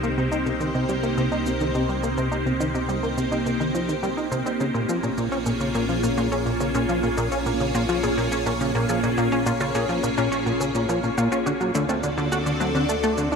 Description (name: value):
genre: ambient, sequencer-driven space music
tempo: 105 BPM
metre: 4/4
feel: straight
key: unclear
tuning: A4 = 441 Hz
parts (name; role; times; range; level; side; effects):
- evolving wavetable pad; sustained chords; 0.0-13.4 s; Bb3 to D5; -25 LUFS; equal; ensemble chorus, built-in reverb, phaser
- plucky analog bass; riff; 0.0-13.4 s; Bb2 to F#4; -25 LUFS; equal; wide subtle chorus, tape echo
- analog drone; bass; 0.0-13.4 s; Bb1 to D2; -32 LUFS; equal; chorus
- shaker and woodblock; percussion; 0.0-13.4 s; none; -38 LUFS; right 2 dB; tape echo
- warbly dusty pluck; arpeggios; 0.2-13.4 s; A3 to Ab4; -31 LUFS; moving between left 4 dB and right 2 dB; chorus, auto-pan, tape echo
room: moderate huge ambient reverb, RT60 8.2 s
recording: none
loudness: -21 LUFS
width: side -5 dB against mid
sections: 0.0-13.4 A section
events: fade-in on synth arpeggio sound 0.0-13.4; fade-in on drum 0.0-13.4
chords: 0.0 Cm7; 4.6 Bbm7; 11.5 D7